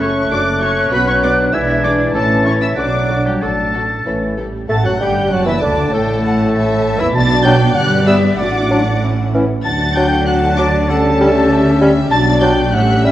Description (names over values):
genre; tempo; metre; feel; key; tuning
quick classical-period movement for symphony orchestra; 97 BPM; 2/4; straight; D major; A4 = 440 Hz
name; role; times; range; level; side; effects
warm studio violin section; melody; 0.0-13.1 s; G5 to A6; -23 LUFS; left 2 dB; none
clear clarinet; second line; 0.0-13.1 s; A3 to D5; -24 LUFS; left 1 dB; none
clear oboe; second line; 0.0-13.1 s; G4 to A5; -24 LUFS; equal; none
concert flute; second line; 0.0-13.1 s; A4 to A6; -21 LUFS; left 1 dB; none
warm studio violin section; second line; 0.0-13.1 s; B3 to A5; -26 LUFS; left 3 dB; none
mellow bassoon; accompaniment; 0.0-13.1 s; A2 to A3; -20 LUFS; equal; none
warm studio viola section; accompaniment; 0.0-13.1 s; D3 to A4; -23 LUFS; equal; none
mellow French horn section; sustained chords; 0.0-13.1 s; A2 to D4; -20 LUFS; left 2 dB; none
dark studio cello section; bass; 0.0-13.1 s; D2 to E4; -20 LUFS; right 2 dB; none
warm studio double bass section; bass; 0.0-13.1 s; F#1 to D2; -20 LUFS; right 2 dB; none
room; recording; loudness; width
wet scoring stage reverb, RT60 1.9 s; worn, warbling old tape, cassette tape, warbly pitch drift; -12 LUFS; side -13 dB against mid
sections
0.0-4.7 A section; 4.7-13.1 B section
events
none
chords
0.0 F#m; 0.9 Bm; 1.5 E7/B; 2.1 A; 2.8 Bm; 3.4 D/A; 4.1 A; 4.7 D; 5.9 A5; 7.1 Bm; 7.8 Em/G; 8.4 D/A; 9.0 A; 9.7 D; 10.9 A7/D; 12.1 Bm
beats
0.31 | 0.92 1.53 | 2.15 2.77 | 3.41 4.06 | 4.70 5.31 | 5.92 6.53 | 7.14 7.75 | 8.38 9.02 | 9.65 10.27 | 10.89 11.50 | 12.11 12.73